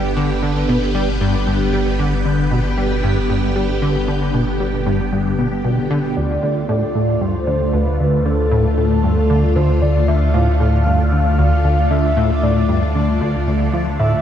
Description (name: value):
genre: ambient, sequencer-driven space music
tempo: 115 BPM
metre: 4/4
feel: straight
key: D dorian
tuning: A4 = 439 Hz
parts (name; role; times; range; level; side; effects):
- phased string machine; sustained chords; 0.0-14.2 s; D3 to G4; -21 LUFS; equal; ensemble chorus, phaser
- plucky analog bass; riff; 0.0-14.1 s; D2 to G3; -19 LUFS; equal; wide subtle chorus, analog delay
- warm sub bass; bass; 0.0-14.2 s; G1 to D2; -20 LUFS; equal; none
- bubbling stepped-filter texture; texture; 0.0-14.2 s; D4 to G5; -33 LUFS; right 1 dB; chorus, built-in reverb
- pulse-width lead; melody; 6.2-14.2 s; A4 to F5; -22 LUFS; equal; chorus, analog delay
room: moderate lush hall reverb, RT60 3.4 s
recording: dark, warm production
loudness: -15 LUFS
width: side -9 dB against mid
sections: 0.0-14.2 A section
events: fade-in on synth texture 0.0-14.2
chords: 0.0 G; 6.2 Dm